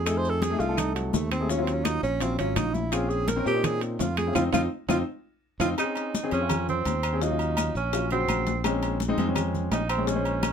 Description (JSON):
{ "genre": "Afro-Cuban jazz", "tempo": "168 BPM", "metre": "4/4", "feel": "straight", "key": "unclear", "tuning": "A4 = 439 Hz", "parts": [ { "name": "breathy tenor saxophone", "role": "melody", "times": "0.0-5.7 s", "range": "Gb3 to C5", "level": "-28 LUFS", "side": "right 3 dB", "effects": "none" }, { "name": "modern bright fingered electric bass", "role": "bass", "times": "0.0-10.5 s", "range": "Ab1 to Bb2", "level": "-29 LUFS", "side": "right 1 dB", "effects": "none" }, { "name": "warm baby grand piano", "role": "accompaniment", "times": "0.1-10.5 s", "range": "Db3 to C5", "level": "-29 LUFS", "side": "left 4 dB", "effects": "none" }, { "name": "bongos and cowbell", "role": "percussion", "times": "0.1-10.5 s", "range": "none", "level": "-35 LUFS", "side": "left 9 dB", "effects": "none" }, { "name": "claves", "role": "percussion", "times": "0.1-10.5 s", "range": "none", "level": "-38 LUFS", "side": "left 9 dB", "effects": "none" }, { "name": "congas", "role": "percussion", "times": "0.1-10.5 s", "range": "none", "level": "-33 LUFS", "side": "left 3 dB", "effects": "none" }, { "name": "maracas", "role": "percussion", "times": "0.1-10.5 s", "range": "none", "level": "-40 LUFS", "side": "left 5 dB", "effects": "none" }, { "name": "timbales and agogo bells", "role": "percussion", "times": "0.1-10.5 s", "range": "none", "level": "-34 LUFS", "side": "right 4 dB", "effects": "none" }, { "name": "mellow tenor saxophone", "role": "second line", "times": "5.8-10.5 s", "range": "C4 to Eb4", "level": "-29 LUFS", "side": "right 5 dB", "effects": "none" } ], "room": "light reverb", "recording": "none", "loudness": "-24 LUFS", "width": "side -7 dB against mid", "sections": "0.0-5.8 A section; 5.8-10.5 A section", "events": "tenor saxophone solo 0.0-5.8, 5.8-10.5; band accent 4.4-5.8; drum fill 4.7-5.8", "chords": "0.1 F7#9; 1.5 Ebm7; 2.9 Bbm7; 4.4 F5; 5.8 Eb13sus4; 7.2 Ebm7; 8.6 Bbm7", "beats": "| 0.06 0.42 0.78 1.14 | 1.50 1.85 2.21 2.57 | 2.93 3.29 3.64 4.00 | 4.36 4.71 5.07 5.43 | 5.79 6.14 6.50 6.86 | 7.22 7.57 7.93 8.29 | 8.64 9.00 9.36 9.72 | 10.07 10.43" }